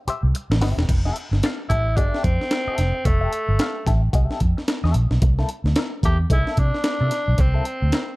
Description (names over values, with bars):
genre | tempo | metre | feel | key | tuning
funk | 111 BPM | 4/4 | swing 60% on 16ths | unclear | A4 = 440 Hz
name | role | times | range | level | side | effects
direct-recorded clean electric guitar | accompaniment | 0.1-8.1 s | Bb3 to F5 | -31 LUFS | left 4 dB | wah, tremolo
vintage muted fingered electric bass | bass | 0.1-7.9 s | E1 to C3 | -20 LUFS | equal | none
breakbeat sampler-style drum kit | drums | 0.1-8.1 s | crash cymbal, hi-hat, kick drum, snare drum | -22 LUFS | equal | none
breathy tenor saxophone | melody | 1.7-8.2 s | A3 to G4 | -25 LUFS | equal | none
room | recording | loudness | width
little or no reverb | dark, warm production | -18 LUFS | side -21 dB against mid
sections
0.9-8.2 A section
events
drum fill 0.0-0.9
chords
0.0 Am7 (rootless); 0.9 Fmaj9; 5.2 C13